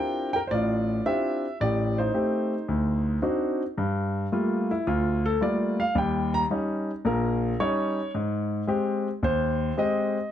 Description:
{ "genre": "solo jazz", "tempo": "110 BPM", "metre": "4/4", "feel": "swing 69% on 8ths", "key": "D minor, G minor from 3.8 s", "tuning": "A4 = 442 Hz", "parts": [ { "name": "clear concert grand piano", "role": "solo", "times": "0.0-10.3 s", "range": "A1 to Bb5", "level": "-24 LUFS", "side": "equal", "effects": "none" } ], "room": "wet studio reverb, RT60 0.6 s", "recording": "dark, warm production", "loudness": "-24 LUFS", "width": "side -10 dB against mid", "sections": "0.0-3.8 A section; 3.8-10.3 B section", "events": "grand piano solo 3.8-10.3", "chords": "0.0 Dm11; 1.6 Am7b5; 2.7 D7b9; 3.8 Gm9; 6.0 Eb7; 8.1 Abmaj7" }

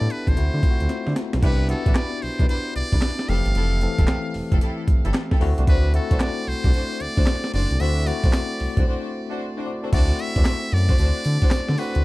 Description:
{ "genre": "R&B, new jack swing", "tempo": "113 BPM", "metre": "4/4", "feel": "swing 64% on 16ths", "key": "unclear", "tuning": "A4 = 440 Hz", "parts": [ { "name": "trumpet with metal mute", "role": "melody", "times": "0.0-12.0 s", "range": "A4 to F5", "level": "-30 LUFS", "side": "equal", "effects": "ping-pong delay" }, { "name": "bell-like tine electric piano", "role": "accompaniment", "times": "0.0-12.0 s", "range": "E3 to D5", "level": "-29 LUFS", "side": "left 4 dB", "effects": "medium stereo tremolo" }, { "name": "smooth synth bass", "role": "bass", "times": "0.0-12.0 s", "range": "E1 to D3", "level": "-22 LUFS", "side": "equal", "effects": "none" }, { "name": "breakbeat sampler-style drum kit", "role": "drums", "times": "0.1-12.0 s", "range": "crash cymbal, handclaps, hi-hat, kick drum, snare drum, tambourine", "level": "-20 LUFS", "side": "equal", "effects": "none" }, { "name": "rich studio string section", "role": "stabs", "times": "1.4-12.0 s", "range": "D4 to C5", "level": "-32 LUFS", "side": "equal", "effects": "none" } ], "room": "little or no reverb", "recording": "dark, warm production, faint mains hum", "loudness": "-19 LUFS", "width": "side -20 dB against mid", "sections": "0.0-1.4 A section; 1.4-9.9 B section; 9.9-12.0 C section", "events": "drum fill 0.9-1.4; break 8.9-9.9", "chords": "0.4 D7; 1.4 Cmaj9; 3.3 Fmaj9; 5.4 D7" }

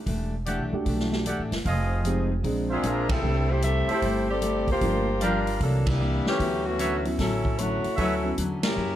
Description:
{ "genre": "jazz, big band swing", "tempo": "152 BPM", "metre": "4/4", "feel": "swing 66% on 8ths", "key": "unclear", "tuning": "A4 = 441 Hz", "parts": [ { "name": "picked steel-string acoustic guitar", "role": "accompaniment", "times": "0.1-9.0 s", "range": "G2 to Ab4", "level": "-32 LUFS", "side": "left 3 dB", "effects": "none" }, { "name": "upright bass", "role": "bass", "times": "0.1-9.0 s", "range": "E1 to F#2", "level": "-28 LUFS", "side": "equal", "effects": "none" }, { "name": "swinging big-band drum kit", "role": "drums", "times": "0.1-8.7 s", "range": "hi-hat, kick drum, ride cymbal, snare drum", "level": "-31 LUFS", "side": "equal", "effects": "none" }, { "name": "warm trumpet section", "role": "stabs", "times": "0.5-8.1 s", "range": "F#4 to F#5", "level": "-33 LUFS", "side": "right 2 dB", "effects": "none" }, { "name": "dark grand piano", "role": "accompaniment", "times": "0.7-8.4 s", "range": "F#3 to Ab4", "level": "-32 LUFS", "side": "right 1 dB", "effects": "none" }, { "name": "warm saxophone section", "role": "melody", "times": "2.7-9.0 s", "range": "E3 to E5", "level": "-27 LUFS", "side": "left 1 dB", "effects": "none" } ], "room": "light reverb", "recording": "none", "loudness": "-23 LUFS", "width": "side -12 dB against mid", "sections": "0.0-9.0 A section", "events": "band accent 3.0, 5.8, 8.6", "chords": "0.1 Em11; 1.6 Fm7; 2.4 Bb9; 3.2 C6; 4.8 Gm7; 5.6 C9; 6.4 Dmaj13" }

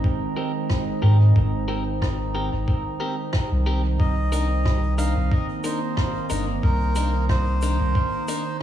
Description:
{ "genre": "ambient dub", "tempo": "91 BPM", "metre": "4/4", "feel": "swing 55% on 16ths", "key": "C minor", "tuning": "A4 = 439 Hz", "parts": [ { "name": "warbly tape-like pad", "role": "sustained chords", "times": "0.0-8.6 s", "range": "Eb3 to G5", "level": "-29 LUFS", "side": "right 3 dB", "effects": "chorus, built-in reverb, vintage 12-bit sampler grit" }, { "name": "electronic kick drum", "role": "drums", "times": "0.0-8.1 s", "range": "none", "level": "-23 LUFS", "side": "equal", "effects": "none" }, { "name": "drifting glass-harmonics texture", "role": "texture", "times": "0.0-8.6 s", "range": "Eb4", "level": "-34 LUFS", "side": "right 4 dB", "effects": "chorus, built-in reverb" }, { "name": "clean electric guitar", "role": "stabs", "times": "0.4-8.4 s", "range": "C4 to Bb4", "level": "-32 LUFS", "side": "left 4 dB", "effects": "low-pass filter, dub echo" }, { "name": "rim click and shaker", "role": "drums", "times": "0.7-8.4 s", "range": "none", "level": "-35 LUFS", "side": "equal", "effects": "dub echo" }, { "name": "soft dub sub bass", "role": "bass", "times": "1.0-7.9 s", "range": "G1 to Ab2", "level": "-21 LUFS", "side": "equal", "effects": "none" }, { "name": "melodica", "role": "melody", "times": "4.0-8.6 s", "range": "Bb4 to F5", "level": "-29 LUFS", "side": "right 1 dB", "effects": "dub echo" } ], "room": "light reverb, small room ambience", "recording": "studio reverb", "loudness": "-20 LUFS", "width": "side -11 dB against mid", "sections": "0.0-8.6 A section", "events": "none", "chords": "0.0 Abmaj7; 4.0 Cm7" }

